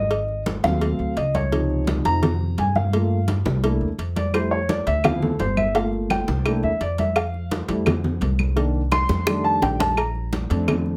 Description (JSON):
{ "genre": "Afro-Cuban jazz", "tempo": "170 BPM", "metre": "4/4", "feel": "straight", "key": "F major", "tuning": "A4 = 436 Hz", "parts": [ { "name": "dark concert grand piano", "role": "accompaniment", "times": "0.0-11.0 s", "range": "C3 to C6", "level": "-25 LUFS", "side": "equal", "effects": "none" }, { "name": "upright bass", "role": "bass", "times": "0.0-11.0 s", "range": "G1 to G2", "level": "-26 LUFS", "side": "equal", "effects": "none" }, { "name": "congas", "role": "percussion", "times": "0.1-11.0 s", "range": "none", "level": "-28 LUFS", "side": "equal", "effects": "none" }, { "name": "cowbell and bongos", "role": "percussion", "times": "0.1-10.9 s", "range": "none", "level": "-30 LUFS", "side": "equal", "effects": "none" }, { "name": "claves", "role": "percussion", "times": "4.3-10.9 s", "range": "none", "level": "-33 LUFS", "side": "equal", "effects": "none" } ], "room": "light reverb", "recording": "none", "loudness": "-22 LUFS", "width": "mono", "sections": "0.0-10.0 A section", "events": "grand piano solo 0.0-11.0; drum fill 9.1-10.0", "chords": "0.1 Ab7b9; 1.5 Dbmaj9; 2.9 Gm9; 3.6 C13; 4.3 Fmaj9; 5.0 Dm7; 5.8 Gm9; 6.5 C13; 7.2 Fmaj7; 8.6 Cm7; 9.3 F13; 10.0 Bbmaj9" }